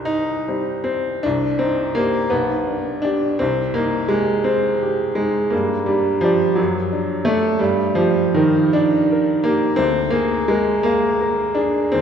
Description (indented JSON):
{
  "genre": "classical, romantic character piece for solo piano",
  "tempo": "56 BPM (dotted quarters)",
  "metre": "6/8",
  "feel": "uneven beats, rubato",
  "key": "C minor",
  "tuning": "A4 = 439 Hz",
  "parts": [
    { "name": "clear upright piano", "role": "solo", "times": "0.0-12.0 s", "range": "B1 to C6", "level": "-16 LUFS", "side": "equal", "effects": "none" }
  ],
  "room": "wet church reverb, RT60 3.0 s",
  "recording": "recorded in a church or concert hall",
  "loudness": "-16 LUFS",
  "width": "side -8 dB against mid",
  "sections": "0.0-1.2 A section; 1.2-12.0 B section",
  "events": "none",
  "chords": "0.0 Cm; 2.3 G/B; 3.4 Cm; 5.5 G5; 6.6 D/F#; 7.6 Gm; 9.8 Bb7/D",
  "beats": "0.07 | 1.24 2.31 | 3.40 4.46 | 5.52 6.57 | 7.61 8.76 | 9.78 10.85 | 11.92"
}